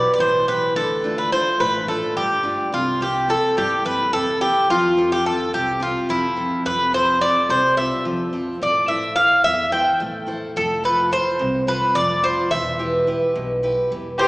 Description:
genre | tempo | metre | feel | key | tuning
greek folk, Greek bouzouki band | 214 BPM (eighths) | 7/8 | straight | unclear | A4 = 440 Hz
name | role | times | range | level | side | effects
Greek bouzouki | melody | 0.0-14.3 s | E4 to G5 | -18 LUFS | equal | none
picked steel-string acoustic guitar | accompaniment | 0.0-14.3 s | B2 to C5 | -24 LUFS | equal | none
upright bass | bass | 0.0-14.3 s | E1 to G2 | -33 LUFS | equal | none
rich violin | second line | 14.2-14.3 s | G4 | -17 LUFS | left 1 dB | none
room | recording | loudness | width
wet church reverb, RT60 2.7 s | recorded in a church or concert hall, small speaker sound | -17 LUFS | side -22 dB against mid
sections
0.0-14.3 A section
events
none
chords
0.0 Em; 0.8 Dm; 2.7 C7; 4.7 F; 8.6 Am; 10.6 F; 12.5 Em

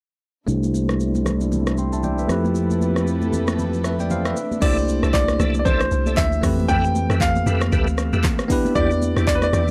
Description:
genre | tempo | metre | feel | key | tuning
amapiano | 116 BPM | 4/4 | swing 58% on 16ths | C major | A4 = 440 Hz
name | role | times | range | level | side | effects
bell-like tine electric piano | accompaniment | 0.5-9.7 s | E3 to C6 | -26 LUFS | equal | low-pass filter
dark studio string section | sustained chords | 0.5-4.6 s | C3 to B4 | -31 LUFS | equal | sidechain pumping, low-pass filter
fingered electric bass | bass | 0.5-4.3 s | C2 to F2 | -25 LUFS | equal | none
deep house drum kit | drums | 0.5-9.7 s | crash cymbal, handclaps, hi-hat, kick drum, rim click, shaker | -27 LUFS | equal | none
congas | percussion | 0.6-9.7 s | none | -31 LUFS | equal | none
bright concert grand piano | melody | 4.6-9.7 s | B4 to G5 | -26 LUFS | equal | analog delay
overdriven tonewheel organ | stabs | 4.6-9.7 s | E4 to E5 | -32 LUFS | equal | chorus vibrato, slow rotary speaker, analog delay
deep log drum bass | bass | 4.6-9.7 s | C2 to F2 | -24 LUFS | equal | none
room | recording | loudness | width
little or no reverb | dry, gritty hardware recording, transformer saturation | -20 LUFS | mono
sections
0.5-4.6 A section; 4.6-9.7 B section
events
filter sweep 0.5-4.6; drop 4.6-9.7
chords
0.5 C69; 2.3 Fmaj9#11; 4.4 C69; 6.4 Fmaj9#11; 8.5 Em7

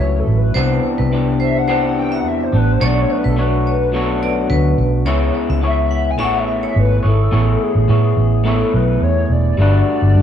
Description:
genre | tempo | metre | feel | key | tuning
indie pop, bedroom pop | 106 BPM | 4/4 | swing 55% on 16ths | A major | A4 = 440 Hz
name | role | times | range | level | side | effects
hollow clarinet-like synth lead | melody | 0.0-10.2 s | G#4 to G#5 | -22 LUFS | left 3 dB | ensemble chorus, tape echo
vibraphone with hard mallets | second line | 0.0-6.9 s | B4 to F#5 | -25 LUFS | right 6 dB | lush chorus, tape echo
electric guitar through a small old amp | accompaniment | 0.0-10.2 s | A2 to C#5 | -19 LUFS | left 2 dB | wide subtle chorus, warbly pitch drift
vintage muted fingered electric bass | bass | 0.0-10.2 s | E1 to A2 | -16 LUFS | right 1 dB | none
room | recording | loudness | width
little or no reverb | dry, gritty hardware recording, cassette tape, studio ambience | -13 LUFS | side -9 dB against mid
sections
0.0-7.3 A section; 7.3-10.2 B section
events
soft synth lead solo 0.0-7.3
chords
0.0 A6; 0.6 Cmaj9; 2.8 Bm9; 5.1 C#m7; 6.2 Amaj9; 9.6 Gmaj9

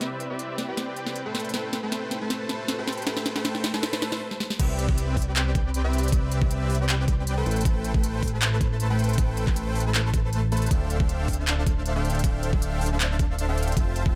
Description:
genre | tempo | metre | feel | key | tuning
future bass | 157 BPM | 4/4 | half-time | C major | A4 = 441 Hz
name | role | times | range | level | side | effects
ethereal airy pad | sustained chords | 0.0-4.2 s | C3 to B5 | -44 LUFS | equal | ensemble chorus, built-in reverb, tremolo, sidechain pumping
dense compressed supersaw | riff | 0.0-14.2 s | A3 to A5 | -32 LUFS | equal | sidechain pumping, low-pass filter, digital delay
trap drum kit | drums | 0.0-14.0 s | crash cymbal, handclaps, hi-hat, ride cymbal, snare drum | -32 LUFS | equal | overdrive
riser | sound effects | 0.5-4.2 s | none | -45 LUFS | equal | none
fat analog bass | bass | 4.6-14.2 s | D1 to C2 | -28 LUFS | equal | tube saturation, sidechain pumping
electronic kick drum | drums | 4.6-14.1 s | none | -27 LUFS | equal | overdrive
room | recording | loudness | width
light reverb | none | -25 LUFS | mono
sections
0.0-4.6 A section; 4.6-14.2 B section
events
build-up 0.0-4.6; drum fill 0.0-4.2, 4.3; stop 4.2-4.6; drop 4.6-14.2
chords
0.0 Cmaj7; 1.3 Am7; 4.6 Cmaj7; 7.5 Am7; 10.7 Dm11

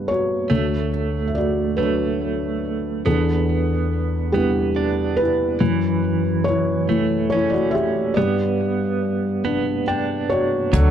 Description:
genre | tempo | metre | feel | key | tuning
acoustic folk-pop ballad | 47 BPM (dotted quarters) | 6/8 | straight | unclear | A4 = 442 Hz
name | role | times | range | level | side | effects
felt-muted upright piano | melody | 0.0-10.9 s | D2 to G5 | -19 LUFS | left 1 dB | tape echo
direct-recorded clean electric guitar | arpeggios | 0.5-10.9 s | E3 to D4 | -26 LUFS | right 8 dB | tremolo, tape echo
hand-pumped harmonium | sustained chords | 10.7-10.9 s | D3 to F#4 | -26 LUFS | left 1 dB | none
vintage muted fingered electric bass | bass | 10.7-10.9 s | D2 | -14 LUFS | equal | none
compact cocktail drum kit | drums | 10.7-10.9 s | hi-hat, kick drum | -22 LUFS | equal | none
room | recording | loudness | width
light reverb | dry, close 1970s-style studio recording | -18 LUFS | side -9 dB against mid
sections
0.0-10.7 A section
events
felt piano fill 9.4-10.7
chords
0.0 G; 0.5 Dmaj7; 3.1 Em7; 5.6 F#m7; 8.2 G

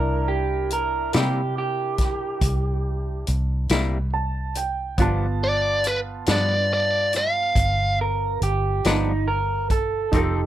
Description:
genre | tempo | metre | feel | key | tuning
slow blues | 47 BPM (dotted quarters) | 12/8 | straight | unclear | A4 = 440 Hz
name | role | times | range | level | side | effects
biting lead guitar | melody | 0.0-8.0 s | B4 to F5 | -22 LUFS | equal | overdrive
electric guitar through a small old amp | second line | 0.0-10.3 s | Eb4 to Bb4 | -25 LUFS | right 4 dB | none
clear upright piano | accompaniment | 0.0-10.5 s | B3 to A5 | -31 LUFS | right 4 dB | none
vintage muted fingered electric bass | bass | 0.0-10.5 s | F1 to C3 | -25 LUFS | equal | none
vintage drum kit | drums | 0.7-10.3 s | hi-hat, kick drum, snare drum | -25 LUFS | equal | none
twangy electric guitar | accompaniment | 1.1-10.4 s | G2 to A4 | -26 LUFS | left 4 dB | tremolo
room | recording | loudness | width
light reverb | none | -20 LUFS | side -12 dB against mid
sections
0.0-10.5 A section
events
upright piano fill 3.7-5.0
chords
0.0 C7; 5.0 G7

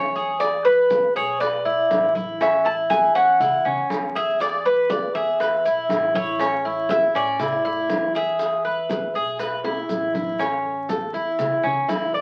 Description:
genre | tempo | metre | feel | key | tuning
latin, Cuban son and guajira | 120 BPM | 4/4 | straight | A major | A4 = 439 Hz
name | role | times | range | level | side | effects
Cuban tres | melody | 0.0-9.9 s | B4 to A5 | -23 LUFS | equal | none
Cuban tres | arpeggios | 0.0-12.2 s | C#4 to D5 | -25 LUFS | equal | none
upright bass | bass | 0.0-12.2 s | A1 to A2 | -47 LUFS | equal | none
bongos | percussion | 0.2-12.2 s | none | -33 LUFS | equal | none
congas | percussion | 0.2-12.2 s | none | -36 LUFS | equal | none
maracas | percussion | 0.2-12.2 s | none | -51 LUFS | equal | none
room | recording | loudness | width
wet club reverb, RT60 0.7 s | very old 78 rpm record, vinyl crackle | -21 LUFS | mono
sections
0.0-10.4 A section; 10.4-12.2 B section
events
drum fill 9.6-10.4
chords
0.4 E7; 2.4 A; 4.4 E; 6.4 A; 8.4 E; 10.4 A

